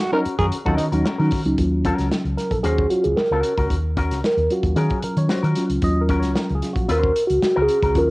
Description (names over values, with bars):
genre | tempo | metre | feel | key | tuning
funk | 113 BPM | 4/4 | straight | Eb dorian | A4 = 441 Hz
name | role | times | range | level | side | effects
growling tenor saxophone | second line | 0.0-0.9 s | Eb4 to Bb4 | -24 LUFS | right 2 dB | plate reverb
electric guitar with an envelope filter | accompaniment | 0.1-8.0 s | Db4 to C5 | -26 LUFS | left 3 dB | plate reverb
mellow tine electric piano | stabs | 0.1-8.1 s | Eb3 to Eb5 | -21 LUFS | equal | phaser
hollow-body short-scale fingered electric bass | bass | 0.3-8.1 s | Bb1 to Eb3 | -22 LUFS | equal | none
warm soul drum kit | drums | 0.3-8.1 s | hi-hat, kick drum, snare drum | -26 LUFS | equal | none
room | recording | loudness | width
light reverb | home recording on cassette | -18 LUFS | side -22 dB against mid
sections
0.0-1.6 A section; 1.6-8.1 B section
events
tine electric piano solo 1.6-8.1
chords
0.0 Ebm7